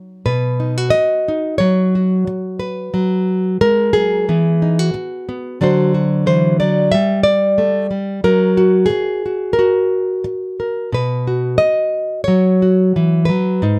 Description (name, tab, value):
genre	folk, solo fingerstyle acoustic guitar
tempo	90 BPM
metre	4/4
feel	rubato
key	unclear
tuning	A4 = 442 Hz
part	nylon-string guitar	solo	0.0-13.8 s	G#2 to E5	-16 LUFS	equal	none
room	light reverb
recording	dark, warm production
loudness	-16 LUFS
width	mono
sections	0.2-13.8 A section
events	none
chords	0.2 B; 1.6 F#5; 2.9 B5/F#; 4.3 Eadd9; 5.6 D7; 6.9 G5; 8.2 F#; 10.9 B; 12.3 F#5